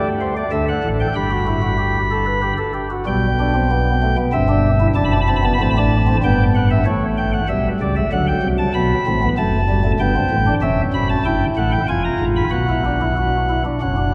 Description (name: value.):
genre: classical, baroque-style 3-part fugue for pipe organ.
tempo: 95 BPM.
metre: 3/4.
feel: straight.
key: G major.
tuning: A4 = 437 Hz.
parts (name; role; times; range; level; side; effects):
pipe organ, flutes; solo; 0.0-14.1 s; E1 to B5; -18 LUFS; equal; none.
room: wet cathedral reverb, RT60 4.9 s.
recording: none.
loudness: -18 LUFS.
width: mono.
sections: 0.0-3.1 A section; 3.1-6.9 B section; 6.9-14.1 A section.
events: none.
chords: 0.0 Am; 0.5 D; 1.2 G; 3.1 G/B; 4.3 Cadd9/G; 5.0 D7/F#; 6.2 G; 6.9 A7; 8.1 D; 8.8 B5; 10.0 Gadd9; 10.6 C#dim/E; 11.9 Fdim; 12.5 F#sus4/B.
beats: 0.52 | 1.16 1.80 2.44 | 3.08 3.71 4.34 | 4.97 5.59 6.22 | 6.86 7.49 8.12 | 8.76 9.38 10.01 | 10.63 11.26 11.89 | 12.53 13.17 13.81.